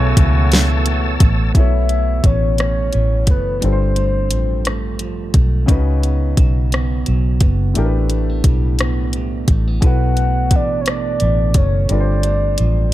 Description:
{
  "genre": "slow six-eight R&B",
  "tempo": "58 BPM (dotted quarters)",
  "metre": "6/8",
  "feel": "straight",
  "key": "B minor",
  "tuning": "A4 = 442 Hz",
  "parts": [
    { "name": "electric guitar at the edge of break-up", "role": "second line", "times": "0.0-12.9 s", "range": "G2 to D#4", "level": "-26 LUFS", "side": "right 7 dB", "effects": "none" },
    { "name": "warm baby grand piano", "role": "accompaniment", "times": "0.0-12.9 s", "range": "A2 to C#5", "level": "-25 LUFS", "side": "left 3 dB", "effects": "none" },
    { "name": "tonewheel organ", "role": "sustained chords", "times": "0.0-1.5 s", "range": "C#5 to E6", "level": "-26 LUFS", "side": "equal", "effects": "chorus vibrato, fast rotary speaker" },
    { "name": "warm horn section", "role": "stabs", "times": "0.0-1.2 s", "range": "C#3 to F#4", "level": "-26 LUFS", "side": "left 4 dB", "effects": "ping-pong delay" },
    { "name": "vintage muted fingered electric bass", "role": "bass", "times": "0.0-12.9 s", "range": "F#1 to C#2", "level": "-17 LUFS", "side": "equal", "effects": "none" },
    { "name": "smooth R&B drum kit", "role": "drums", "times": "0.2-12.7 s", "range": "hi-hat, kick drum, rim click, snare drum", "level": "-15 LUFS", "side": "equal", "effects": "none" },
    { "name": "soft octave-layered synth lead", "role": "melody", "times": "1.6-5.0, 9.9-12.9 s", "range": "B4 to F#5", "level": "-22 LUFS", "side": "left 1 dB", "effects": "chorus" }
  ],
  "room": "digital ambience",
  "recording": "dark, warm production",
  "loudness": "-14 LUFS",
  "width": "side -15 dB against mid",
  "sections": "0.0-1.5 A section; 1.5-12.9 B section",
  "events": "none",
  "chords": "0.0 B9sus4; 3.6 G9sus4; 5.7 C#9sus4; 7.8 A9sus4; 9.8 B9sus4; 11.9 G9sus4"
}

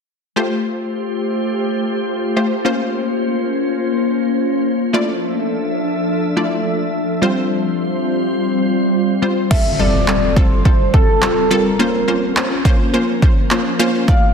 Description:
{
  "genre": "dance-pop",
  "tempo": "105 BPM",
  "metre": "4/4",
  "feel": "straight",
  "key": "F major",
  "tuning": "A4 = 443 Hz",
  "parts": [
    { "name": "wide unison pluck", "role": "accompaniment", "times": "0.4-14.3 s", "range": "G3 to D5", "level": "-19 LUFS", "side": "left 1 dB", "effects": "sidechain pumping" },
    { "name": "glassy FM pad", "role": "sustained chords", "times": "0.4-14.3 s", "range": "F3 to E5", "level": "-19 LUFS", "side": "left 1 dB", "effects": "ensemble chorus, built-in reverb, sidechain pumping" },
    { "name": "warm velvety synth lead", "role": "melody", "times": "9.5-14.3 s", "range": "A4 to F5", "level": "-19 LUFS", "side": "equal", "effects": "chorus, dub echo" },
    { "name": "deep house drum kit", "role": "drums", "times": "9.5-14.2 s", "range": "crash cymbal, handclaps, kick drum", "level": "-15 LUFS", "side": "equal", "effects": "overdrive" },
    { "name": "impact", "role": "sound effects", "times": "9.5-11.8 s", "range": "none", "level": "-23 LUFS", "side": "right 1 dB", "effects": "none" }
  ],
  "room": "moderate lush hall reverb, RT60 1.7 s",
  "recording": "dense, heavily limited modern master",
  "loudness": "-14 LUFS",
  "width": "side -6 dB against mid",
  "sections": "0.4-9.5 A section; 9.5-14.3 B section",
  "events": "impact 9.5-11.8",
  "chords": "0.4 Fadd9; 2.7 Bbmadd9; 4.9 Dmadd9; 7.2 Csus4; 9.5 Fadd9; 11.8 Bbmadd9"
}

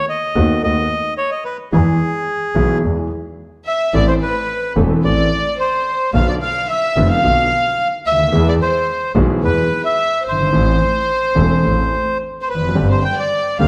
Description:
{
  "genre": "tango",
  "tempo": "109 BPM",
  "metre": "4/4",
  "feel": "rubato",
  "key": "A minor",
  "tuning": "A4 = 438 Hz",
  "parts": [
    { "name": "bandoneon", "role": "melody", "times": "0.0-13.7 s", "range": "G#4 to G5", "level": "-22 LUFS", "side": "equal", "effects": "none" },
    { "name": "warm concert grand piano", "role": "accompaniment", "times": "0.4-13.7 s", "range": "E1 to A4", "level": "-21 LUFS", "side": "equal", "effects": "none" },
    { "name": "clear double bass", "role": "bass", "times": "0.4-13.7 s", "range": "E1 to E2", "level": "-21 LUFS", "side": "equal", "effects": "none" },
    { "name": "warm studio violin section", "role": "second line", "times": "3.7-13.7 s", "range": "B4 to G5", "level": "-23 LUFS", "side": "equal", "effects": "analog delay" }
  ],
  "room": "wet recital hall reverb, RT60 1.6 s",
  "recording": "none",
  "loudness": "-17 LUFS",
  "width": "mono",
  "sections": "0.0-13.7 A section",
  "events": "none",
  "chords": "0.0 B7/D#; 1.7 E; 3.9 Am; 6.1 Bdim; 8.3 E; 10.5 Am; 12.8 Gsus4"
}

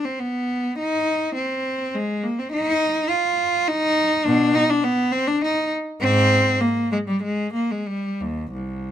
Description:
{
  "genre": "classical, baroque-style suite movement for unaccompanied cello",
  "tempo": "89-105 BPM",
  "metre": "3/4",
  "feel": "rubato",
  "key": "C minor",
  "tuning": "A4 = 442 Hz",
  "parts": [
    { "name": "rich cello", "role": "solo", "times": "0.0-8.9 s", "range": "C2 to F4", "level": "-19 LUFS", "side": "equal", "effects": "none" }
  ],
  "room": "light reverb",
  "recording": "close, detailed microphones",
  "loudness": "-19 LUFS",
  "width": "side -10 dB against mid",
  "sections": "0.0-8.9 A section",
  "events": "none",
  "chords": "none"
}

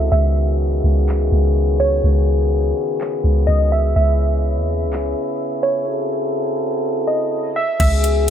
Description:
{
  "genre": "hip hop, atmospheric cloud-rap",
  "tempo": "125 BPM",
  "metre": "4/4",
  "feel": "half-time",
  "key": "unclear",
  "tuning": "A4 = 440 Hz",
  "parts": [
    { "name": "warbly dusty pluck", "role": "melody", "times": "0.0-8.3 s", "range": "C#5 to E5", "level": "-23 LUFS", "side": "right 2 dB", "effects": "chorus, low-pass filter, digital delay" },
    { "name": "mellow French horn section", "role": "sustained chords", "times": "0.0-8.3 s", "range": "C#3 to A4", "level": "-21 LUFS", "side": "left 2 dB", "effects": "stereo widening, sidechain pumping" },
    { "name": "soft 808-style bass", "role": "bass", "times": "0.0-8.3 s", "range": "C#2 to D#2", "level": "-16 LUFS", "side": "equal", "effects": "none" },
    { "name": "trap drum kit", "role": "drums", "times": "1.1-8.2 s", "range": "crash cymbal, handclaps, hi-hat, kick drum", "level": "-23 LUFS", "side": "equal", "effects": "none" }
  ],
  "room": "little or no reverb",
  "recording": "low-pass filter",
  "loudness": "-16 LUFS",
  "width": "side -9 dB against mid",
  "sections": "0.0-7.8 A section",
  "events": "filter sweep 0.0-7.8; drums muted 5.9-7.8",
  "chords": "0.1 Emaj9/C# (rootless); 4.0 C#m7; 5.9 G#7b9b13/C#; 7.8 Eadd9/C#"
}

